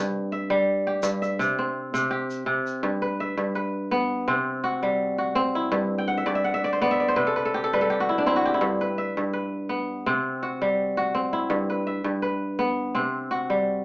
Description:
west african traditional, West African string and xylophone music; 83 BPM; 4/4; straight; G major; A4 = 440 Hz
kora; arpeggios; 0.0-13.8 s; G2 to G5; -22 LUFS; equal
tube shaker; percussion; 1.0-2.8 s; -39 LUFS; left 1 dB
moderate small room ambience, RT60 0.5 s; band playing live in one room, small speaker sound; -22 LUFS; side -22 dB against mid
0.0-2.8 A section; 2.8-13.8 B section
kora fill 6.0-8.6
0.0 Em/G; 1.4 C; 2.8 G; 4.3 C5; 5.7 G; 7.2 C5; 8.6 G; 10.1 C5; 11.5 G; 12.9 C5
0.67 1.39 2.11 | 2.83 3.55 4.28 5.00 | 5.72 6.44 7.16 7.88 | 8.61 9.33 10.05 10.78 | 11.50 12.22 12.95 13.67

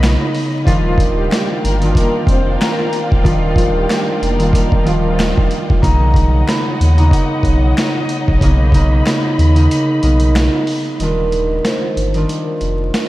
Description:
hip hop, boom-bap hip-hop; 93 BPM; 4/4; swing 56% on 16ths; Eb major; A4 = 444 Hz
concert harp; accompaniment; 0.0-13.1 s; C#3 to F4; -18 LUFS; right 1 dB; cassette tape, high-pass filter, low-pass filter
dark studio string section; sustained chords; 0.0-11.0 s; D#4 to B5; -26 LUFS; left 1 dB; high-pass filter, low-pass filter
sub bass with octave; bass; 0.0-12.9 s; D1 to D#2; -15 LUFS; equal
boom bap sampler-style drum kit; drums; 0.0-13.1 s; hi-hat, kick drum, snare drum; -17 LUFS; equal
finger snaps; percussion; 0.0-10.5 s; barely audible
muted symphonic string section; stabs; 0.7-5.1 s; F3 to C5; -22 LUFS; left 2 dB; high-pass filter, low-pass filter, diffuse ambient delay
vibraphone with soft mallets; melody; 5.8-12.4 s; Bb4 to B5; -24 LUFS; right 1 dB; high-pass filter, low-pass filter, diffuse ambient delay
moderate huge ambient reverb, RT60 7.7 s; dreamy mix soaked in reverb, vinyl crackle; -12 LUFS; side -17 dB against mid
0.0-11.0 A section; 11.0-13.1 B section
break 0.0-0.7, 9.7-11.0, 11.0-13.1
0.0 Bmaj9; 0.7 Ebmaj9; 5.8 Bmaj9; 11.0 Ebmaj9
0.03 | 0.67 1.32 1.96 2.61 | 3.25 3.90 4.54 5.19 | 5.83 6.48 7.12 7.77 | 8.41 9.06 9.70 10.35 | 10.99 11.64 12.28 12.93

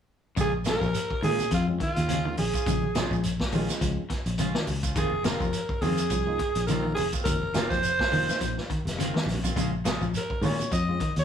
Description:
afrobeat; 104 BPM; 4/4; swing 56% on 16ths; Bb minor; A4 = 441 Hz
raspy alto saxophone; melody; 0.4-11.2 s; F4 to Eb5; -28 LUFS; right 2 dB
electric guitar at the edge of break-up; arpeggios; 0.4-11.2 s; C3 to F3; -32 LUFS; left 4 dB; slapback echo
clean electric guitar; stabs; 0.4-11.2 s; Eb3 to F4; -36 LUFS; right 4 dB
fingered electric bass; bass; 0.4-11.2 s; F1 to Bb2; -30 LUFS; left 1 dB
vintage drum kit; drums; 0.4-11.2 s; hi-hat, kick drum, snare drum; -31 LUFS; equal
congas; percussion; 0.4-10.7 s; -34 LUFS; right 2 dB
shekere; percussion; 0.4-11.2 s; -38 LUFS; right 6 dB
tine electric piano; accompaniment; 1.7-11.2 s; Ab3 to F4; -36 LUFS; right 3 dB
moderate studio reverb, RT60 0.6 s; band playing live in one room, studio ambience; -24 LUFS; side -8 dB against mid
0.4-11.2 A section
drum fill 9.1-9.6
0.4 Bbm7; 5.0 F7sus4; 9.6 Bbm7
| 0.37 0.95 1.52 2.09 | 2.67 3.24 3.81 4.39 | 4.96 5.54 6.11 6.69 | 7.26 7.84 8.41 8.99 | 9.56 10.14 10.72

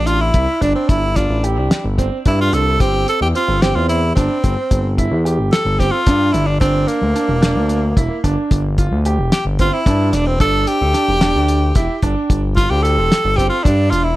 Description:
progressive instrumental, band music in an uneven meter; 221 BPM (eighths); 7/8; straight; G dorian; A4 = 440 Hz
clear tenor saxophone; melody; 0.0-14.2 s; Bb3 to A4; -19 LUFS; equal; tape echo
clear grand piano; arpeggios; 0.0-14.0 s; C4 to G4; -22 LUFS; right 4 dB
smooth gliding synth bass; bass; 0.0-14.2 s; E1 to G2; -18 LUFS; equal
cloth-damped thuddy drum kit; drums; 0.1-14.0 s; hi-hat, kick drum, snare drum; -16 LUFS; equal
light reverb; -13 LUFS; side -16 dB against mid
0.0-14.2 A section
tenor saxophone solo 0.0-14.2
0.0 Dsus2/G; 2.8 G7sus4; 6.6 G5
0.07 0.34 0.62 | 0.89 1.16 1.44 1.71 1.98 2.25 2.53 | 2.80 3.07 3.35 3.62 3.89 4.16 4.44 | 4.71 4.98 5.25 5.53 5.80 6.07 6.34 | 6.61 6.88 7.16 7.43 7.70 7.97 8.24 | 8.51 8.78 9.05 9.32 9.60 9.87 10.14 | 10.41 10.68 10.95 11.22 11.49 11.76 12.03 | 12.30 12.57 12.84 13.11 13.38 13.65 13.92

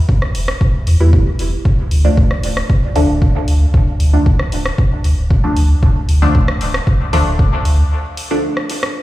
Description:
dub techno; 115 BPM; 4/4; straight; A4 = 441 Hz
electronic kick drum; drums; 0.1-7.5 s; -12 LUFS; equal
deep house drum kit; drums; 0.2-8.9 s; hi-hat, rim click; -24 LUFS; equal; dub echo
warm sub bass; bass; 0.3-7.8 s; D1 to E2; -12 LUFS; equal; sidechain pumping
filtered dub chord stab; stabs; 1.0-8.6 s; D3 to E4; -20 LUFS; equal; chorus, phaser, sidechain pumping, dub echo
little or no reverb; played on a big sound system in a bare room, large studio reverb; -12 LUFS; side -16 dB against mid
0.0-9.0 A section
break 7.9-9.0
0.0 Em; 1.7 Dm
0.09 0.61 1.13 | 1.65 2.17 2.70 3.22 | 3.74 4.26 4.78 5.30 | 5.83 6.35 6.87 7.39 | 7.91 8.44

